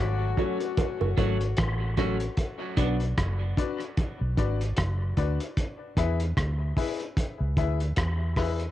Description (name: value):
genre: dub reggae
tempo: 75 BPM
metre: 4/4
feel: swing 58% on 16ths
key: B dorian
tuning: A4 = 440 Hz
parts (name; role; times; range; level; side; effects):
- mellow horn section; second line; 0.0-1.9 s; F#3 to F#4; -35 LUFS; left 9 dB; dub echo
- vintage muted fingered electric bass; bass; 0.0-8.7 s; F#1 to E2; -27 LUFS; equal; transformer saturation
- clean electric guitar; accompaniment; 0.4-3.0 s; F#3 to F#4; -36 LUFS; right 7 dB; dub echo
- warm upright piano; stabs; 0.4-8.6 s; C#4 to E5; -34 LUFS; left 8 dB; dub echo
- cloth-damped thuddy drum kit; drums; 0.4-8.7 s; hi-hat, kick drum, rim click; -28 LUFS; equal; none
- bongos; percussion; 0.4-2.2 s; none; -36 LUFS; right 9 dB; dub echo
room: light reverb, studio reverb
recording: home recording on cassette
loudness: -25 LUFS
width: side -13 dB against mid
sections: 0.0-8.7 A section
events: break 0.0-8.7; part muted 2.4-8.7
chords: 0.0 F#m; 2.4 Bm; 5.6 E